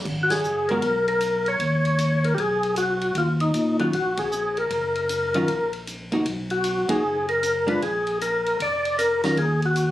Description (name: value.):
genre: soul jazz organ trio.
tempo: 155 BPM.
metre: 4/4.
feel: swing 64% on 8ths.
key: Eb minor.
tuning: A4 = 441 Hz.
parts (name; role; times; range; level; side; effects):
tonewheel organ; bass; 0.0-9.9 s; F1 to Bb2; -28 LUFS; equal; overdrive, chorus vibrato, slow rotary speaker.
vintage drum kit; drums; 0.1-9.9 s; crash cymbal, hi-hat, kick drum, ride cymbal, snare drum; -34 LUFS; equal; none.
overdriven tonewheel organ; melody; 0.2-9.9 s; Eb4 to D5; -22 LUFS; left 1 dB; slow rotary speaker, chorus vibrato, plate reverb.
vintage hollow-body jazz guitar; accompaniment; 0.7-0.8, 3.8-9.4 s; Eb3 to Bb4; -24 LUFS; equal; none.
room: moderate studio reverb, RT60 0.5 s.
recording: recorded on a phone in the room, club reverb, compression.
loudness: -21 LUFS.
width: side -14 dB against mid.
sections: 0.0-9.9 A section.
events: band accent 0.3, 4.1, 6.8.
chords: 0.1 Abm9; 3.2 Ebm; 6.3 Bmaj7(no3); 7.8 Bb7; 9.4 Ebm.